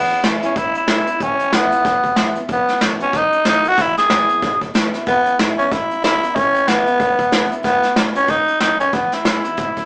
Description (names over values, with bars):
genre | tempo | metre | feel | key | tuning
rockabilly | 186 BPM | 4/4 | swing 59% on 8ths | E major | A4 = 441 Hz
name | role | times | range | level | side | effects
growling tenor saxophone | melody | 0.0-9.9 s | B3 to G#4 | -15 LUFS | equal | none
picked steel-string acoustic guitar | accompaniment | 0.0-9.9 s | E2 to F#4 | -28 LUFS | equal | none
upright bass | bass | 0.0-9.8 s | E1 to B2 | -32 LUFS | equal | none
vintage brush drum kit | drums | 0.1-9.8 s | hi-hat, kick drum, snare drum | -19 LUFS | equal | none
room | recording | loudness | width
wet small room reverb, RT60 0.5 s | rough rehearsal-room recording, small speaker sound | -14 LUFS | side -37 dB against mid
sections
0.0-9.9 A section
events
none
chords
0.0 E; 2.5 B7; 3.8 E; 7.6 B7; 8.9 E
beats
0.24 0.56 0.88 | 1.20 1.52 1.85 2.17 | 2.49 2.81 3.13 3.46 | 3.78 4.10 4.42 4.75 | 5.07 5.39 5.71 6.03 | 6.36 6.68 7.00 7.32 | 7.64 7.97 8.29 8.61 | 8.93 9.26 9.58